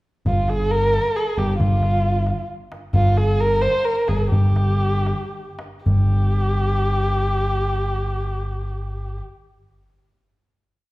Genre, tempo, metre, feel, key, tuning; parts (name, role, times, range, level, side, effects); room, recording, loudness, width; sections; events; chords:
Persian modal ensemble; 72-90 BPM (dotted quarters); 6/8; straight; G dastgah shur; A4 = 440 Hz
dark kamancheh; melody; 0.3-9.2 s; F4 to C5; -22 LUFS; equal
overdriven picked electric bass; bass; 0.3-9.2 s; G1; -22 LUFS; equal
tombak; percussion; 0.3-6.1 s; -22 LUFS; equal
wet recital hall reverb, RT60 1.4 s; heard from further back in the room; -18 LUFS; side -19 dB against mid
0.3-5.9 A section; 5.9-9.2 final note
slowing down 2.9-5.9